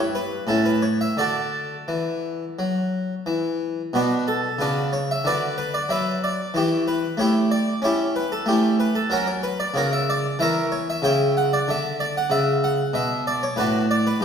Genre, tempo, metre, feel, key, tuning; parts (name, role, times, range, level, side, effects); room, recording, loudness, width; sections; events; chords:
classical, baroque-style suite movement for harpsichord; 84-96 BPM; 4/4; rubato; D major, B minor from 3.9 s; A4 = 440 Hz
harpsichord; solo; 0.0-14.2 s; G2 to G5; -20 LUFS; equal
wet recital hall reverb, RT60 1.5 s; heard from further back in the room; -20 LUFS; side -7 dB against mid
0.0-3.9 A section; 3.9-14.2 A section
0.5 A; 1.2 D; 3.9 Bm; 5.2 Bm/D; 6.5 C#dim/E; 9.1 F#; 10.4 C#dim7; 11.7 Bm